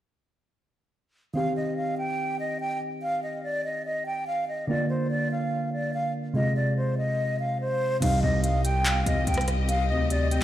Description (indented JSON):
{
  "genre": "hip hop, trap",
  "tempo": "144 BPM",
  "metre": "4/4",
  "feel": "half-time",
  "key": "C minor",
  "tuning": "A4 = 440 Hz",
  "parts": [
    { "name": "soft electric-piano-like synth keys", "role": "accompaniment", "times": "1.3-10.4 s", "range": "C3 to G4", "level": "-29 LUFS", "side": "right 1 dB", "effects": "chorus" },
    { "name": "breathy hollow silver concert flute", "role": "melody", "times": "1.4-10.4 s", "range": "C5 to G5", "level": "-28 LUFS", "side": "equal", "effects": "digital delay" },
    { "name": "warm symphonic string section", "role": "sustained chords", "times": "8.0-10.4 s", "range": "C4 to Eb5", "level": "-33 LUFS", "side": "left 3 dB", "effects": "none" },
    { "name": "distorted 808-style bass", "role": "bass", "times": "8.0-10.4 s", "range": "C2 to D2", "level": "-25 LUFS", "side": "left 1 dB", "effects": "distortion" },
    { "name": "trap drum kit", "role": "drums", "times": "8.0-10.4 s", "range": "crash cymbal, handclaps, hi-hat, rim click", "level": "-30 LUFS", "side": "equal", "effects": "overdrive" },
    { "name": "soft octave-layered synth lead", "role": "second line", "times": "8.2-10.4 s", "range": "Eb5 to G5", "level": "-34 LUFS", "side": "left 3 dB", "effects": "chorus, digital delay" }
  ],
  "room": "light reverb",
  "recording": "played on a big sound system in a bare room, large studio reverb",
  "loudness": "-24 LUFS",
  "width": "side -12 dB against mid",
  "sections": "1.4-8.0 A section; 8.0-10.4 B section",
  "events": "none",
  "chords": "1.4 Cm; 4.7 Bb; 6.4 Fm; 8.0 Cm"
}